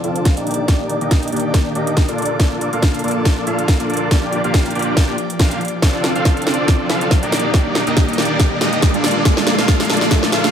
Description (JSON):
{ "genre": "future bass", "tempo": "140 BPM", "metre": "4/4", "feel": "swing 55% on 16ths, half-time", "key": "Bb major", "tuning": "A4 = 440 Hz", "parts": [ { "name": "airy breathy pad", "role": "sustained chords", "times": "0.0-10.5 s", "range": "Eb3 to D5", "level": "-27 LUFS", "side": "left 2 dB", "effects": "chorus, sidechain pumping" }, { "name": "dense compressed supersaw", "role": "riff", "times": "0.0-10.5 s", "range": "Bb3 to F5", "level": "-19 LUFS", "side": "equal", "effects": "cassette tape, sidechain pumping, low-pass filter, ping-pong delay" }, { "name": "trap drum kit", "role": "drums", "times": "0.0-10.5 s", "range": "hi-hat, snare drum", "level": "-21 LUFS", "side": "equal", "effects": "overdrive, high-pass filter on snare, high-pass filter on hats, high-pass filter on room" }, { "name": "riser", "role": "sound effects", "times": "3.0-10.5 s", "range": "none", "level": "-26 LUFS", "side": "right 1 dB", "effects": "none" }, { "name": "electronic kick drum", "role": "drums", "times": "0.3-10.2 s", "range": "none", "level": "-14 LUFS", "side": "equal", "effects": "overdrive" } ], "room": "moderate plate reverb, RT60 1.0 s, digital ambience", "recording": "dreamy mix soaked in reverb", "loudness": "-14 LUFS", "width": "side -8 dB against mid", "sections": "0.0-10.5 A section", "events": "build-up 0.0-10.5; drum fill 0.0-10.5; filter sweep on supersaw synth 0.0-10.5; riser 3.0-10.5", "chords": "0.5 Ebmaj7; 2.2 Bbmaj7; 4.1 Gm7; 5.8 Dm7; 7.3 Ebmaj7; 9.0 Bbmaj7" }